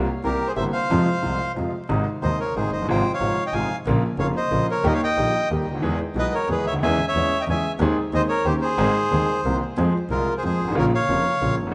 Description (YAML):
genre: tango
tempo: 183 BPM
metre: 3/4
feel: rubato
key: Ab major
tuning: A4 = 440 Hz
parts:
  - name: clear grand piano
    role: accompaniment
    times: 0.0-11.7 s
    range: Eb1 to G#4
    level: -26 LUFS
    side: equal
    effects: none
  - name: clear double bass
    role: bass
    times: 0.0-11.7 s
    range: F1 to F2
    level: -29 LUFS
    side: equal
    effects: none
  - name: bandoneon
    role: melody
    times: 0.2-11.6 s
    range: F4 to Ab5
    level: -26 LUFS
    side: equal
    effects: tape echo
room: wet large studio reverb, RT60 1.4 s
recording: vinyl crackle, nothing above 10.3 kHz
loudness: -22 LUFS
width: mono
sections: 0.0-1.9 A section; 1.9-9.8 B section; 9.8-11.7 A section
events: none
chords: 0.2 C7; 0.9 Fm; 1.9 Ab; 2.9 Fm/Ab; 3.9 Bbm; 4.8 Eb; 5.8 E; 6.8 Dbm/Fb; 7.8 Ab/Eb; 8.5 Eb7; 8.8 Ab; 9.4 C7; 9.8 Fm; 10.8 Bbm